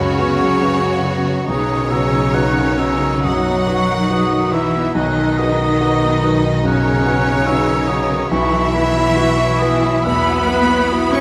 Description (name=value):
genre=cinematic, emotional film score for orchestra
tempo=70 BPM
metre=4/4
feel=rubato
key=unclear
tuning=A4 = 440 Hz
part: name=rich studio violin section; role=melody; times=0.0-11.2 s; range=D#4 to F#4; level=-26 LUFS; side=equal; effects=none
part: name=concert flute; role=second line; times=0.0-11.2 s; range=B5 to F#6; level=-25 LUFS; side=equal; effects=none
part: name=mellow clarinet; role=second line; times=0.0-11.2 s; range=C#4 to C#5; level=-27 LUFS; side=equal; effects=none
part: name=rich studio violin section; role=second line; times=0.0-11.2 s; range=C#5 to C#6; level=-26 LUFS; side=equal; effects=none
part: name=warm concert grand piano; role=accompaniment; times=0.0-11.2 s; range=B1 to B4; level=-25 LUFS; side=equal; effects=none
part: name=warm studio viola section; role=accompaniment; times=0.0-11.2 s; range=C#3 to B3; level=-30 LUFS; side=equal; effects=none
part: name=mellow French horn section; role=sustained chords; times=0.0-11.2 s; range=C#3 to C#4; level=-25 LUFS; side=equal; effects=none
part: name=concert harp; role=arpeggios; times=0.0-11.2 s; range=F#2 to F#5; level=-30 LUFS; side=equal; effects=none
part: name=rich studio cello section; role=bass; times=0.0-11.2 s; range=C#3 to C#4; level=-24 LUFS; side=equal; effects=none
part: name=rich studio double bass section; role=bass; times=0.0-11.2 s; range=B1 to F#2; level=-26 LUFS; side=equal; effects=none
room=wet scoring stage reverb, RT60 1.6 s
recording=none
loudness=-16 LUFS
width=mono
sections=0.0-11.2 A section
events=none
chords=0.0 F#sus4; 1.5 Badd9; 8.3 Esus2/B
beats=0.63 | 1.49 2.35 3.24 4.10 | 4.95 5.80 6.65 7.47 | 8.31 9.17 10.05 10.90